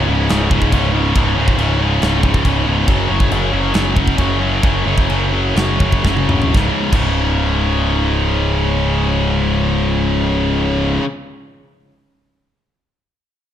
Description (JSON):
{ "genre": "heavy metal", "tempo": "118-140 BPM", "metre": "4/4", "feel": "straight", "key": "unclear", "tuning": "A4 = 439 Hz", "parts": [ { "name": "heavy high-gain guitar", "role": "riff", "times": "0.0-11.0 s", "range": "C#2 to F#3", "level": "-16 LUFS", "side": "left 1 dB", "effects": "distortion" }, { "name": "growling picked electric bass", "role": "bass", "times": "0.0-11.0 s", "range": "C#1 to F#1", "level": "-19 LUFS", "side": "equal", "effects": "overdrive" }, { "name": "tight metal drum kit", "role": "drums", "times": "0.3-7.1 s", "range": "china cymbal, crash cymbal, kick drum, snare drum, toms", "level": "-19 LUFS", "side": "equal", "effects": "none" } ], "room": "light reverb", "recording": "dark, warm production", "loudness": "-13 LUFS", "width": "side -10 dB against mid", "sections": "0.0-6.5 A section; 6.5-10.6 B section", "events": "slowing down 2.9-6.5; drum fill 6.0-6.5", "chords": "0.0 C#5; 2.9 F#5; 6.5 C#5", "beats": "0.29 0.72 | 1.15 1.58 2.01 2.44 | 2.87 3.31 3.74 4.18 | 4.63 5.09 5.56 6.05 | 6.55 7.05 7.56 8.07 | 8.58 9.09 9.60 10.10" }